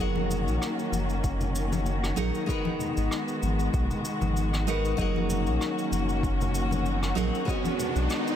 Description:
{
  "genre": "sunset chillout",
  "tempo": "96 BPM",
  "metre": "4/4",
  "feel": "swing 55% on 16ths",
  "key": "F# major",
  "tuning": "A4 = 440 Hz",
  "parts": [
    { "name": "nylon-string guitar", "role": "accompaniment", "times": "0.0-8.4 s", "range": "F#3 to F#5", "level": "-31 LUFS", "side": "moving between left 5 dB and right 4 dB", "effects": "auto-pan, ping-pong delay" },
    { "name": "muted chamber string section", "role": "sustained chords", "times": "0.0-8.4 s", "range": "D#3 to F#4", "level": "-31 LUFS", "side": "left 1 dB", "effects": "none" },
    { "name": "round analog bass", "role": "bass", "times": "0.0-8.1 s", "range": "F#1 to B1", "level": "-29 LUFS", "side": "equal", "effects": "tube saturation" },
    { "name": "congas", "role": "percussion", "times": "0.2-7.9 s", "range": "none", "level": "-35 LUFS", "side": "left 5 dB", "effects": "none" },
    { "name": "cabasa and rim click", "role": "drums", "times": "0.3-8.4 s", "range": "none", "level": "-38 LUFS", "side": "equal", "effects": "none" },
    { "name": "electronic kick drum", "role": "drums", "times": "1.2-7.6 s", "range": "none", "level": "-31 LUFS", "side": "equal", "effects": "overdrive" },
    { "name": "riser", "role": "sound effects", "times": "6.3-8.4 s", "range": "none", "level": "-36 LUFS", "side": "right 1 dB", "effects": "none" }
  ],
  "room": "light reverb, studio reverb",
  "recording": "none",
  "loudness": "-25 LUFS",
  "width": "side -10 dB against mid",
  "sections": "0.0-8.4 A section",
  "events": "riser 6.3-8.4",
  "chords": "0.0 F#6; 2.5 G#m7; 5.0 F#6; 7.5 B6"
}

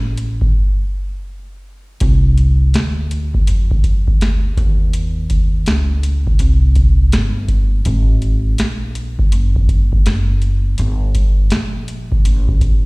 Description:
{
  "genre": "hip hop, jazz-hop",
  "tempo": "82 BPM",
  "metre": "4/4",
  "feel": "swing 63% on 16ths",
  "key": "unclear",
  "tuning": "A4 = 445 Hz",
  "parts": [
    { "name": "upright bass", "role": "bass", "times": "0.0-12.9 s", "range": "F#1 to F2", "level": "-17 LUFS", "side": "equal", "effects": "none" },
    { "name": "booming analog drum machine", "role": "drums", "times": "0.2-12.8 s", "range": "hi-hat, kick drum, snare drum", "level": "-15 LUFS", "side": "equal", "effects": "none" }
  ],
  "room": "little or no reverb",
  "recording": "played on a big sound system in a bare room, stone room reverb",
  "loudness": "-13 LUFS",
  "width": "side -29 dB against mid",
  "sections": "0.0-2.0 A section; 2.0-12.9 B section",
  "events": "break 0.5-2.0",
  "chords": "none"
}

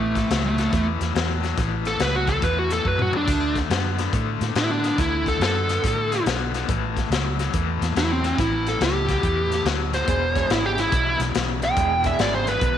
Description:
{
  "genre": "electric blues shuffle",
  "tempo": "141 BPM",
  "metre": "4/4",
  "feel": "swing 65% on 8ths",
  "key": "A major",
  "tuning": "A4 = 440 Hz",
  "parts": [
    { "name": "smooth overdriven lead guitar", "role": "melody", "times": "0.0-12.8 s", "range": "A3 to G5", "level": "-23 LUFS", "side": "right 2 dB", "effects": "none" },
    { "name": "overdriven semi-hollow guitar", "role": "riff", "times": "0.0-12.8 s", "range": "E2 to B3", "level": "-28 LUFS", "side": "left 10 dB", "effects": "tremolo" },
    { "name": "vintage muted fingered electric bass", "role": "bass", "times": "0.0-12.8 s", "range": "E1 to A2", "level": "-26 LUFS", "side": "right 2 dB", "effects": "none" },
    { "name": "crunchy breakbeat drum kit", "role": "drums", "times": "0.2-12.7 s", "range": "hi-hat, kick drum, snare drum, splash cymbal, toms", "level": "-26 LUFS", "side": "left 2 dB", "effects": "none" },
    { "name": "dark horn section", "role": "stabs", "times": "10.1-12.5 s", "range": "G#3 to G#4", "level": "-32 LUFS", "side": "right 10 dB", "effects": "none" }
  ],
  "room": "moderate echo chamber reverb, RT60 2.0 s",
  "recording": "1960s-style stereo with parts hard left and right",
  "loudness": "-20 LUFS",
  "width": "side -10 dB against mid",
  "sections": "0.0-12.8 A section",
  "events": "lead electric guitar solo 0.0-12.8; drum fill 2.9-3.3",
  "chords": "0.0 A; 3.3 D; 6.7 A7; 10.1 E7"
}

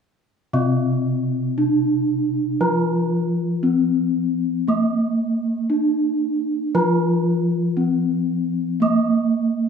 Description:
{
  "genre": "gamelan",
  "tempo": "58 BPM",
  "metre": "4/4",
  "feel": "straight",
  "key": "unclear",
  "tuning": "A4 = 440 Hz",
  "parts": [
    { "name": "gamelan-type bronze metallophone", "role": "melody", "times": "0.5-9.7 s", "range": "Bb3-40c to F4-20c", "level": "-20 LUFS", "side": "left 1 dB", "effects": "none" },
    { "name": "gamelan-type bronze metallophone", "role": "accompaniment", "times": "0.5-9.7 s", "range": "C3 to Bb3-40c", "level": "-22 LUFS", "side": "right 1 dB", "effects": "none" }
  ],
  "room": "wet recital hall reverb, RT60 1.7 s",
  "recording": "minimal, uncompressed stereo recording",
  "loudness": "-18 LUFS",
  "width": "side -6 dB against mid",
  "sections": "0.5-9.7 A section",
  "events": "none",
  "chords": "none"
}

